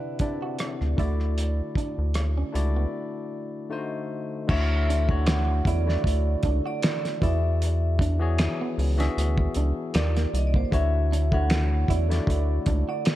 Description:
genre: R&B, neo-soul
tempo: 77 BPM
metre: 4/4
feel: swing 54% on 16ths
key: D major, D lydian from 4.5 s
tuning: A4 = 441 Hz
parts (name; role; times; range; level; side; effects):
- vibraphone with medium hard mallets; melody; 0.0-13.2 s; C5 to F#5; -33 LUFS; right 2 dB; none
- barky tine electric piano; accompaniment; 0.0-13.2 s; C3 to E5; -32 LUFS; left 4 dB; none
- electric guitar at the edge of break-up; second line; 0.2-13.0 s; Bb3 to F#4; -37 LUFS; right 6 dB; spring reverb
- cloth-damped thuddy drum kit; drums; 0.2-13.2 s; crash cymbal, finger snaps, hi-hat, kick drum, rim click, snare drum; -27 LUFS; equal; none
- rubbery square bass; bass; 0.8-12.8 s; C2 to E2; -23 LUFS; equal; none
room: small room ambience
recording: dark, warm production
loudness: -22 LUFS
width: side -14 dB against mid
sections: 0.0-4.5 A section; 4.5-13.2 B section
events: break 2.9-4.5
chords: 0.0 Cmaj9; 1.0 Dadd9; 3.7 D7b9; 4.5 Dmaj7; 7.2 E7; 9.9 Ebmaj7; 10.7 Dmaj7

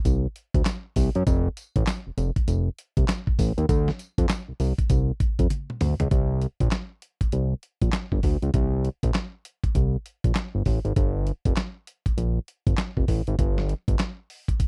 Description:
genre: R&B, new jack swing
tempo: 99 BPM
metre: 4/4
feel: swing 62% on 16ths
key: unclear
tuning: A4 = 440 Hz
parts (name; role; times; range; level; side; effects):
- fat analog bass; bass; 0.1-14.0 s; F1 to F#2; -26 LUFS; equal; none
- dusty soul sampler-style drum kit; drums; 0.1-14.7 s; handclaps, hi-hat, kick drum, snare drum, tambourine, toms; -26 LUFS; equal; none
room: little or no reverb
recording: dry, close 1970s-style studio recording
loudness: -25 LUFS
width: mono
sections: 0.0-6.1 A section; 6.1-14.7 B section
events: drum fill 5.5-6.1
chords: none

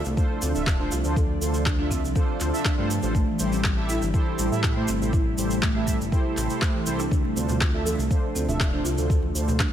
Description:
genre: afro house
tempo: 121 BPM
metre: 4/4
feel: straight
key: D minor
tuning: A4 = 440 Hz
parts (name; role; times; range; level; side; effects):
- ethereal airy pad; sustained chords; 0.0-9.7 s; C3 to E4; -31 LUFS; equal; ensemble chorus, built-in reverb, phaser, sidechain pumping
- buzzing marimba with soft mallets; arpeggios; 0.0-9.7 s; E3 to A4; -30 LUFS; equal; sidechain pumping, tape echo
- tube shaker; percussion; 0.0-9.7 s; none; -35 LUFS; right 2 dB; none
- smooth synth bass; bass; 0.1-9.7 s; D1 to A2; -28 LUFS; equal; tube saturation, sidechain pumping
- mellow synth brass; stabs; 0.2-9.6 s; D4 to E5; -31 LUFS; right 3 dB; chorus, sidechain pumping, tape echo
- electronic kick drum; drums; 0.2-9.7 s; none; -24 LUFS; equal; none
- electronic rim click and handclaps; drums; 0.7-9.7 s; none; -30 LUFS; equal; none
- congas; percussion; 7.2-9.7 s; none; -33 LUFS; right 3 dB; none
room: studio reverb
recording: none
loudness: -22 LUFS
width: side -10 dB against mid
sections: 0.0-9.7 A section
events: none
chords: 0.0 Dm7; 3.1 Am7; 7.1 Dm7

